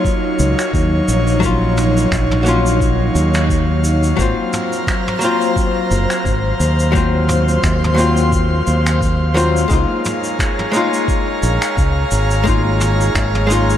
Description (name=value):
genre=sunset chillout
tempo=87 BPM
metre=4/4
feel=swing 56% on 16ths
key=Db major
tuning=A4 = 440 Hz
part: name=archtop guitar, miked and amplified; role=accompaniment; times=0.0-13.8 s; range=Gb3 to F4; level=-20 LUFS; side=moving between left 5 dB and right 3 dB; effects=auto-pan, analog delay
part: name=airy breathy pad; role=sustained chords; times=0.0-13.8 s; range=Gb3 to C6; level=-19 LUFS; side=equal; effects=chorus
part: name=electronic kick drum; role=drums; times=0.0-13.3 s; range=none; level=-20 LUFS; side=equal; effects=overdrive
part: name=vintage brush drum kit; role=drums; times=0.1-13.8 s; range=finger snaps, shaker, toms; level=-25 LUFS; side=equal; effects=none
part: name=modern bright fingered electric bass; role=bass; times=0.4-13.8 s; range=Gb1 to Eb2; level=-16 LUFS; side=equal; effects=none
room=moderate plate reverb, RT60 2.7 s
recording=dreamy mix soaked in reverb, lossy compression artefacts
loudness=-13 LUFS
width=side -10 dB against mid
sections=0.0-13.8 A section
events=none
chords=0.0 Ebm9; 4.2 Ab13 (rootless); 9.7 Db6